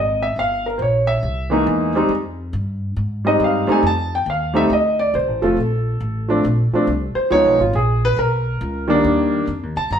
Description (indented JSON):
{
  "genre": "jazz piano trio",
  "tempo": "138 BPM",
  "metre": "4/4",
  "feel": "swing 65% on 8ths",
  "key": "unclear",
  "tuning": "A4 = 439 Hz",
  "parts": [
    { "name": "warm concert grand piano", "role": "melody", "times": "0.0-10.0 s", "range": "Eb3 to Bb5", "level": "-17 LUFS", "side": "equal", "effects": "none" },
    { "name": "upright bass", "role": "bass", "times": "0.0-10.0 s", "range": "F1 to Ab2", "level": "-22 LUFS", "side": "equal", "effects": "none" }
  ],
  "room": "wet stone room reverb, RT60 0.9 s",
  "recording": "band playing live in one room",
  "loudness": "-16 LUFS",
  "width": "side -8 dB against mid",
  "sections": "0.0-10.0 A section",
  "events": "grand piano solo 0.0-10.0",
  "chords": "0.4 Gm7b5; 1.2 C7alt; 2.1 Fm7; 3.8 F7; 5.6 Bbmaj7sus2; 7.3 Db9; 9.0 Cm9",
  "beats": "| 0.38 0.81 1.24 1.68 | 2.11 2.54 2.97 3.41 | 3.84 4.27 4.71 5.14 | 5.57 6.01 6.44 6.88 | 7.31 7.74 8.18 8.61 | 9.05 9.48 9.91"
}